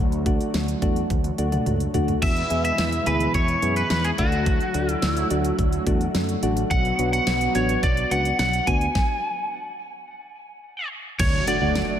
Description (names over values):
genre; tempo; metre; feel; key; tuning
synth-pop; 107 BPM; 4/4; straight; unclear; A4 = 440 Hz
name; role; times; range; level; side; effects
brassy analog pad; sustained chords; 0.0-12.0 s; B2 to F#4; -29 LUFS; right 1 dB; chorus
fretless electric bass; bass; 0.0-11.8 s; A1 to F#2; -26 LUFS; equal; none
pop drum kit; drums; 0.1-11.9 s; crash cymbal, hi-hat, kick drum, snare drum, toms; -26 LUFS; equal; none
soft electric-piano-like synth keys; accompaniment; 0.3-11.8 s; A3 to G#4; -27 LUFS; left 1 dB; chorus, slapback echo
lightly driven lead guitar; melody; 2.2-12.0 s; F#4 to G#5; -25 LUFS; equal; slapback echo, tape echo
impact; sound effects; 11.2-12.0 s; none; -30 LUFS; equal; none
room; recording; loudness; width
moderate lush hall reverb, RT60 1.9 s; big arena sound; -20 LUFS; side -10 dB against mid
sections
0.0-2.2 A section; 2.2-11.2 B section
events
drum fill 1.1-2.2; stop 9.0-11.2; impact 11.2-12.0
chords
0.0 D; 2.2 E; 4.2 D; 6.7 Bm; 9.0 N.C.; 11.2 D